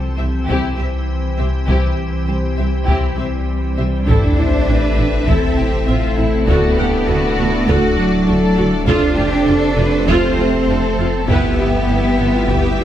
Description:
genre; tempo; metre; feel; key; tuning
cinematic, hybrid orchestral and electronic film score; 100 BPM; 4/4; straight; A minor; A4 = 439 Hz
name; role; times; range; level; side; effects
organ-like drone; sustained chords; 0.0-12.8 s; C3 to E5; -25 LUFS; left 2 dB; ensemble chorus, built-in reverb
pure sine sub bass; bass; 0.0-12.8 s; D1 to C2; -21 LUFS; equal; none
rich symphonic violin section; second line; 0.2-12.8 s; E4 to E5; -25 LUFS; left 3 dB; none
warm symphonic viola section; accompaniment; 0.2-12.8 s; C4 to F#5; -23 LUFS; right 1 dB; none
rich symphonic cello section; bass; 0.2-12.8 s; C2 to D4; -20 LUFS; right 2 dB; none
rich symphonic double bass section; bass; 0.2-12.8 s; F1 to D2; -22 LUFS; right 2 dB; none
taiko ensemble; drums; 0.5-12.8 s; none; -21 LUFS; equal; none
warm studio violin section; melody; 4.1-12.8 s; C5 to E5; -27 LUFS; left 4 dB; none
mellow French horn section; sustained chords; 4.1-12.8 s; C4 to B4; -25 LUFS; left 6 dB; none
mellow trombone section; sustained chords; 4.1-12.8 s; A2 to A3; -25 LUFS; right 4 dB; none
sub drop; sound effects; 4.1-6.5 s; none; -21 LUFS; equal; none
room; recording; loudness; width
moderate scoring stage reverb, RT60 1.7 s; none; -14 LUFS; side -11 dB against mid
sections
0.0-4.1 A section; 4.1-12.8 B section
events
build-up 0.0-4.1; impact 4.1-6.5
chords
0.0 C; 4.1 Am; 6.5 D; 8.9 F6; 11.3 Em/G

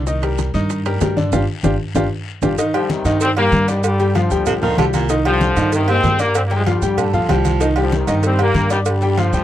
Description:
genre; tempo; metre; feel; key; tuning
latin, salsa; 191 BPM; 4/4; straight; C minor; A4 = 439 Hz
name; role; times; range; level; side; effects
upright bass; bass; 0.0-9.4 s; G1 to G2; -20 LUFS; right 1 dB; none
bright upright piano; accompaniment; 0.1-9.4 s; D3 to D6; -20 LUFS; left 2 dB; none
bongos and cowbell; percussion; 0.1-9.3 s; none; -27 LUFS; left 4 dB; none
congas; percussion; 0.1-9.4 s; none; -24 LUFS; left 2 dB; none
guiro; percussion; 0.1-9.4 s; none; -37 LUFS; left 9 dB; none
maracas; percussion; 0.1-9.4 s; none; -33 LUFS; right 22 dB; none
timbales and agogo bells; percussion; 0.2-9.3 s; none; -26 LUFS; right 9 dB; none
warm trombone section; melody; 2.7-9.4 s; C3 to C4; -20 LUFS; left 1 dB; none
clear baritone saxophone; second line; 4.5-7.7 s; Bb2 to F3; -22 LUFS; right 6 dB; none
room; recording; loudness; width
light reverb; dry, close 1970s-style studio recording; -15 LUFS; side -12 dB against mid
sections
0.0-2.6 A section; 2.6-9.4 B section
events
drum fill 1.3-2.6; band accent 1.3-2.6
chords
0.1 Cm7; 1.3 G5; 2.6 Cm7; 3.8 G7sus4; 5.1 Cm7; 6.3 G7sus4; 7.6 Cm7; 8.9 G7(no3)

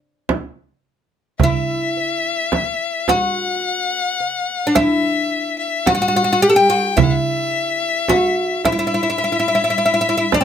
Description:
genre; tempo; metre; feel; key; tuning
Arabic maqam ensemble; 108 BPM (eighths); 10/8; straight; unclear; A4 = 445 Hz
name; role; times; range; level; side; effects
darbuka; percussion; 0.3-10.4 s; none; -20 LUFS; right 9 dB; none
frame drum; percussion; 0.3-10.4 s; none; -20 LUFS; right 3 dB; none
oud; melody; 1.4-10.4 s; C4 to A4; -17 LUFS; equal; none
bright violin; second line; 1.4-10.4 s; D5 to G5; -20 LUFS; left 5 dB; none
room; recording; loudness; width
light reverb; close, detailed microphones; -16 LUFS; side -8 dB against mid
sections
0.0-10.4 A section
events
none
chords
none

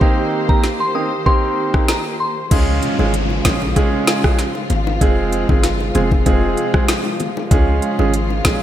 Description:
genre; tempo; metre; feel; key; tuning
dancehall; 96 BPM; 4/4; straight; unclear; A4 = 440 Hz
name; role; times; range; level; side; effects
clear baby grand piano; accompaniment; 0.0-8.6 s; Ab3 to Ab4; -20 LUFS; right 3 dB; none
warm studio string section; sustained chords; 0.0-8.6 s; C3 to C5; -23 LUFS; equal; sidechain pumping
island pop drum kit; drums; 0.0-8.6 s; crash cymbal, hi-hat, kick drum, rim click, snare drum; -16 LUFS; equal; gated reverb
soft synth bell; melody; 0.5-2.3 s; Bb5 to Eb6; -22 LUFS; left 2 dB; chorus, tremolo, ping-pong delay
warm 808-style bass; bass; 2.5-8.6 s; F1 to Db2; -20 LUFS; equal; none
bongos; percussion; 2.5-8.6 s; none; -27 LUFS; left 6 dB; none
downlifter; sound effects; 2.5-7.5 s; none; -29 LUFS; left 3 dB; none
room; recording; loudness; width
moderate lush hall reverb, RT60 2.2 s; bright 1980s-style digital production; -14 LUFS; side -11 dB against mid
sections
0.0-2.5 A section; 2.5-8.6 B section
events
none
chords
0.0 Cm7; 2.5 Db; 5.0 Fm; 7.5 Db

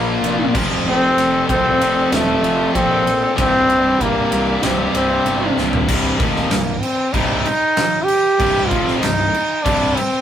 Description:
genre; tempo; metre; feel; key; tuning
heavy metal; 96 BPM; 4/4; straight; C minor; A4 = 440 Hz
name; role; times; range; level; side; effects
clear trombone; melody; 0.0-10.2 s; A3 to G4; -17 LUFS; equal; none
high-gain lead guitar; second line; 0.0-5.5 s; F4 to A4; -26 LUFS; right 1 dB; distortion
fuzz guitar; riff; 0.0-10.0 s; C2 to Bb3; -27 LUFS; equal; none
scooped high-gain guitar; riff; 0.0-10.0 s; C2 to Bb3; -22 LUFS; left 3 dB; distortion
tight distorted guitar; riff; 0.0-10.0 s; C2 to Bb3; -28 LUFS; right 3 dB; none
fuzz picked electric bass; bass; 0.0-9.9 s; C1 to C2; -26 LUFS; right 1 dB; overdrive
big rock drum kit; drums; 0.2-10.1 s; crash cymbal, kick drum, ride cymbal, snare drum, toms; -22 LUFS; right 1 dB; none
room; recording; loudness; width
light reverb; rough rehearsal-room recording; -14 LUFS; side -10 dB against mid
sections
0.0-5.9 A section; 5.9-10.2 B section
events
half time 0.0-5.9; drum fill 5.6-5.9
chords
0.0 Bb5; 0.5 F; 3.4 C5; 5.9 Cm

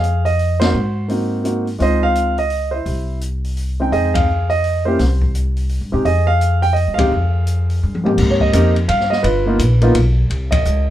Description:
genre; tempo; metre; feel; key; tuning
jazz piano trio; 170 BPM; 3/4; swing 63% on 8ths; F minor; A4 = 439 Hz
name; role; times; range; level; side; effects
warm grand piano; melody; 0.0-10.8 s; Ab2 to G5; -17 LUFS; right 1 dB; none
upright bass; bass; 0.0-10.9 s; G1 to C3; -17 LUFS; equal; none
open jazz drum kit; drums; 0.0-10.8 s; crash cymbal, hi-hat, kick drum, ride cymbal, snare drum, toms; -23 LUFS; left 2 dB; none
room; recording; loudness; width
light reverb; minimal, uncompressed stereo recording; -14 LUFS; side -12 dB against mid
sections
0.0-8.2 A section; 8.2-10.9 B section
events
band accent 0.6, 4.1, 6.9, 10.5; drum fill 7.8-8.2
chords
0.0 Fm7; 0.7 Ab9; 1.8 Dbmaj7; 2.9 C; 3.9 Fm7; 5.0 N.C.; 6.1 Fm9; 8.2 Abmaj7; 9.2 G7alt; 10.3 Cm

